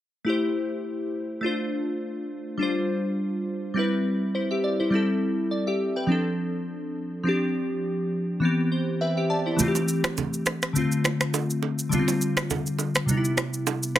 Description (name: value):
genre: afrobeats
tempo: 103 BPM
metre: 4/4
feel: swing 55% on 16ths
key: C major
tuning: A4 = 440 Hz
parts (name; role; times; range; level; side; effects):
- glassy digital keys; accompaniment; 0.2-14.0 s; C3 to A5; -24 LUFS; left 1 dB; chorus, plate reverb
- electronic shaker, rim click and finger snaps; drums; 9.6-14.0 s; none; -26 LUFS; right 1 dB; overdrive, soft clipping on snare
- congas and bongos; percussion; 9.6-14.0 s; none; -30 LUFS; right 7 dB; none
room: moderate small room reverb, RT60 0.5 s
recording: dense, heavily limited modern master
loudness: -23 LUFS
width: side -12 dB against mid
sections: 0.3-14.0 A section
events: synth keys fill 8.4-9.6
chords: 0.3 Am7; 1.4 Dm7; 2.6 G7sus4; 3.8 Cmaj7; 4.9 Am7; 6.1 Dm7; 7.3 G7sus4; 8.4 Cmaj7; 9.6 Am7; 10.8 Dm7; 11.9 G7sus4; 13.1 Cmaj7